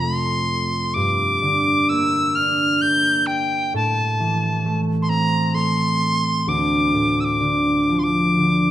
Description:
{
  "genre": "celtic folk, Celtic slow air",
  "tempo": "64 BPM",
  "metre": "3/4",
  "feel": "rubato",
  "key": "D minor",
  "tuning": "A4 = 440 Hz",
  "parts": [
    { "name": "bright reedy wooden whistle", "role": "melody", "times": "0.0-8.7 s", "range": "G5 to G6", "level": "-20 LUFS", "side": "equal", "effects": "none" },
    { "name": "concert harp", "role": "accompaniment", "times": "0.0-8.7 s", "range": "D2 to D4", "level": "-20 LUFS", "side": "right 1 dB", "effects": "none" }
  ],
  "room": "moderate recital hall reverb, RT60 1.7 s",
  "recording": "minimal, uncompressed stereo recording",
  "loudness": "-17 LUFS",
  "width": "side -12 dB against mid",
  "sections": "0.0-8.7 A section",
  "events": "none",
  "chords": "0.0 F; 0.9 Gm; 3.7 Am; 6.5 Dm"
}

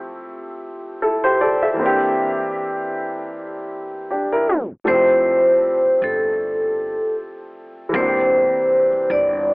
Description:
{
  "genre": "hip hop",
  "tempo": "78 BPM",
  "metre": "4/4",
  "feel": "swing 56% on 16ths",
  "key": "F major",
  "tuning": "A4 = 440 Hz",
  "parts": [
    { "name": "dark upright piano", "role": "accompaniment", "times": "0.0-9.5 s", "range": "E3 to E5", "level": "-21 LUFS", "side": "equal", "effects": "cassette tape, low-pass filter" },
    { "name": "vibraphone with medium hard mallets", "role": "melody", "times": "4.9-9.5 s", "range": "A4 to D5", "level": "-16 LUFS", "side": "equal", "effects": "low-pass filter" },
    { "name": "upright bass", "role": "bass", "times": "4.9-9.5 s", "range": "E1 to G1", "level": "-32 LUFS", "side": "equal", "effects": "none" }
  ],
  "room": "wet spring reverb, RT60 2.4 s",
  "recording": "worn, warbling old tape, cassette tape, warbly pitch drift, tape stop, telephone sound",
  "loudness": "-16 LUFS",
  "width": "side -38 dB against mid",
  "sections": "0.0-4.9 A section; 4.9-9.5 B section",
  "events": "tape stop 4.5-4.9",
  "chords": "0.0 Fmaj9; 1.8 C9/E; 4.9 Fmaj9; 7.9 C9/E"
}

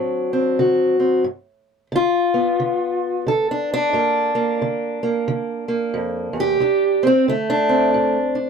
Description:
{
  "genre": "acoustic country blues, solo or duo",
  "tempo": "90 BPM",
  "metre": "4/4",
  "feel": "swing 62% on 8ths",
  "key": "unclear",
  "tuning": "A4 = 439 Hz",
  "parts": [
    { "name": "fingerpicked steel-string acoustic guitar", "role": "solo", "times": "0.0-8.5 s", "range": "D2 to A4", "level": "-17 LUFS", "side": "equal", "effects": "none" }
  ],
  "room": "light reverb",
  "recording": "none",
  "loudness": "-17 LUFS",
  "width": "side -6 dB against mid",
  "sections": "0.0-8.5 A section",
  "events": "none",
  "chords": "0.0 D7; 1.3 G7; 3.9 Gm7; 6.6 D7(no3)"
}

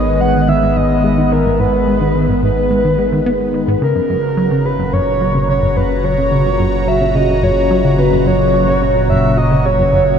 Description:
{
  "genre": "ambient",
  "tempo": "108 BPM",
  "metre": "4/4",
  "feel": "straight",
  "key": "unclear",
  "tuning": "A4 = 440 Hz",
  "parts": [
    { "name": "breathy flute-like synth lead", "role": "melody", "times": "0.0-10.2 s", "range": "A#4 to F#5", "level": "-16 LUFS", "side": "equal", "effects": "wide subtle chorus, cassette tape, ping-pong delay" },
    { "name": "phased analog pad", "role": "sustained chords", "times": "0.0-10.2 s", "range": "A#2 to A#5", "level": "-16 LUFS", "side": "equal", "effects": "phaser, chorus" },
    { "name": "warm sub bass", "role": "bass", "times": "0.0-10.2 s", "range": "F#1 to G#1", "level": "-21 LUFS", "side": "equal", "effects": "none" },
    { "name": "plucky analog bass", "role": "riff", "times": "0.2-10.0 s", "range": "F#2 to B3", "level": "-18 LUFS", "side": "equal", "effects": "ping-pong delay" }
  ],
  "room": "wet huge ambient reverb, RT60 9.0 s",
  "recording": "none",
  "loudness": "-12 LUFS",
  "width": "side -7 dB against mid",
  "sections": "0.0-10.2 A section",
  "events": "none",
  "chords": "0.0 G#m; 3.8 F#"
}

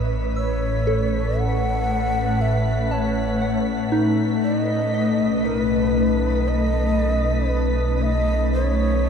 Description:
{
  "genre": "ambient",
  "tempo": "59 BPM",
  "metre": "4/4",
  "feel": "straight",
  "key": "unclear",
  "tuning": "A4 = 440 Hz",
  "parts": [
    { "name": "breathy mellow shakuhachi", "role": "melody", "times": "0.0-9.1 s", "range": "B4 to F#5", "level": "-26 LUFS", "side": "equal", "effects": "ping-pong delay" },
    { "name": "ethereal airy pad", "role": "sustained chords", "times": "0.0-9.1 s", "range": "A2 to B4", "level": "-22 LUFS", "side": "left 1 dB", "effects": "ensemble chorus, built-in reverb" },
    { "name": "soft synth bell", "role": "arpeggios", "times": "0.0-9.1 s", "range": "D#4 to E6", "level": "-29 LUFS", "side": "equal", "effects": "chorus, phaser, ping-pong delay" },
    { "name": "deep rumbling drone", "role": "bass", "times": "0.0-9.1 s", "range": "A1 to B1", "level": "-25 LUFS", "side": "equal", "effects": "built-in reverb" },
    { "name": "dark studio violin section", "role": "texture", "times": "0.0-9.1 s", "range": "B6", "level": "-36 LUFS", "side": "left 1 dB", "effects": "none" }
  ],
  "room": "wet shimmer reverb, RT60 7.8 s",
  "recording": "dark, warm production",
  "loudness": "-19 LUFS",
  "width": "side -7 dB against mid",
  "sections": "0.0-9.1 A section",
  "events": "none",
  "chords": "0.0 Aadd9; 4.4 B7"
}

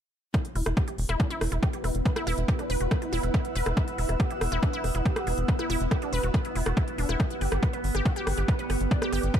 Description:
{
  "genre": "psychedelic trance",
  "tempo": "140 BPM",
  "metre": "4/4",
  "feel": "straight",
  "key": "E minor",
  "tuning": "A4 = 440 Hz",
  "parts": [
    { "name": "overtone-sweeping drone", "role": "sustained chords", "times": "0.9-9.4 s", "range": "B3 to B4", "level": "-34 LUFS", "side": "right 1 dB", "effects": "chorus, built-in reverb, phaser, sidechain pumping" },
    { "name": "wide unison pluck", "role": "riff", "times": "0.3-9.4 s", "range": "D4 to E5", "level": "-33 LUFS", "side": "equal", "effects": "auto-pan, sidechain pumping, digital delay" },
    { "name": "electronic kick drum", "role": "drums", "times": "0.3-9.4 s", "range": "none", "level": "-26 LUFS", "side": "equal", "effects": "overdrive" },
    { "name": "techno drum kit", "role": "drums", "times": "0.3-9.4 s", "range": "hi-hat, rim click", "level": "-36 LUFS", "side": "equal", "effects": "overdrive" },
    { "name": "granular cloud pad", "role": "texture", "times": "1.7-9.4 s", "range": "E4 to E6", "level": "-37 LUFS", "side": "right 1 dB", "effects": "built-in reverb, sidechain pumping" },
    { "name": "tight sequencer bass", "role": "bass", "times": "0.6-9.3 s", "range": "E1 to G1", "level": "-28 LUFS", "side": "equal", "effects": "none" }
  ],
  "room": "digital ambience",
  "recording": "dark, warm production",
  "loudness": "-24 LUFS",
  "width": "side -9 dB against mid",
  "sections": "0.3-9.4 A section",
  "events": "none",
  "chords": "0.3 E5; 7.2 G5"
}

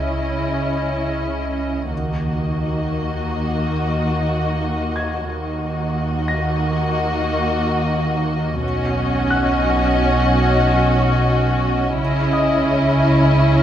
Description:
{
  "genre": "cinematic",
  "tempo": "89 BPM",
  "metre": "5/4",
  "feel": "straight",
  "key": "Eb phrygian",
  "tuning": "A4 = 440 Hz",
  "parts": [
    { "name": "muted studio violin section", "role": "melody", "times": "0.0-13.6 s", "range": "Eb5", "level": "-26 LUFS", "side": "left 3 dB", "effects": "none" },
    { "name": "muted studio violin section", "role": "second line", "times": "0.0-13.6 s", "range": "Fb4 to Gb4", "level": "-23 LUFS", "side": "left 1 dB", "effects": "none" },
    { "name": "muted studio viola section", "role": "accompaniment", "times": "0.0-13.6 s", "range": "Bb3 to Db4", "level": "-24 LUFS", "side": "right 1 dB", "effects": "none" },
    { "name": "muted studio cello section", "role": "bass", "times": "0.0-13.6 s", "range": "B2 to Eb3", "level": "-24 LUFS", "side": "right 2 dB", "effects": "none" },
    { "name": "muted studio double bass section", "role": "bass", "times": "0.0-13.6 s", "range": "B1 to Eb2", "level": "-24 LUFS", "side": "right 2 dB", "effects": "none" },
    { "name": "deep rumbling drone", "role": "drone", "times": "0.0-13.6 s", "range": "B1 to Eb2", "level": "-26 LUFS", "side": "left 1 dB", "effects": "built-in reverb, phaser" },
    { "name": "clear baby grand piano", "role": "texture", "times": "5.0-13.6 s", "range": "Eb5 to Bb6", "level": "-28 LUFS", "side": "left 2 dB", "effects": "none" }
  ],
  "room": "moderate scoring stage reverb, RT60 1.5 s",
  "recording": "none",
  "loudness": "-17 LUFS",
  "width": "side -10 dB against mid",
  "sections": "0.0-13.6 A section",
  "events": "none",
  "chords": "0.0 Dbmadd9; 1.9 Ebm; 8.6 Badd9; 12.0 Dbmadd9"
}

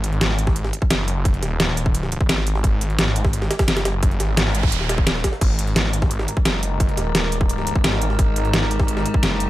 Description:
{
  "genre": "dark technical drum and bass",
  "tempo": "173 BPM",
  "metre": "4/4",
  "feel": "straight",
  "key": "unclear",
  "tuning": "A4 = 439 Hz",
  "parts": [
    { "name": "snarling distorted saw bass", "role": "bass", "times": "0.0-9.5 s", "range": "D#1 to G#1", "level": "-22 LUFS", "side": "equal", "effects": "distortion, tube saturation, sidechain pumping" },
    { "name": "dubstep drum kit", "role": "drums", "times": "0.0-9.5 s", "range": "crash cymbal, hi-hat, snare drum", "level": "-22 LUFS", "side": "equal", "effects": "small room ambience" },
    { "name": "jungle sampler-style drum kit", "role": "drums", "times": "0.0-9.5 s", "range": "hi-hat, snare drum", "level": "-28 LUFS", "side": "right 1 dB", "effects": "high-pass filter on snare, small room ambience, high-pass filter on hats" },
    { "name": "electronic kick drum", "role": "drums", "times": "0.5-9.2 s", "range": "none", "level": "-19 LUFS", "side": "equal", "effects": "overdrive, small room ambience" },
    { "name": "noise sweep", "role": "sound effects", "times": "4.3-5.4 s", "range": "none", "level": "-29 LUFS", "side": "right 4 dB", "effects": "none" },
    { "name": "metallic inharmonic drone", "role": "sustained chords", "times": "5.7-9.5 s", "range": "G#3 to A#4", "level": "-26 LUFS", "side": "equal", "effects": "chorus, built-in reverb, phaser, sidechain pumping" }
  ],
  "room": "digital ambience",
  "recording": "none",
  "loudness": "-17 LUFS",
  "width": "side -16 dB against mid",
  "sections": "0.0-9.5 A section",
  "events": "noise sweep 4.3-5.4",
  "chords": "0.0 G#sus2"
}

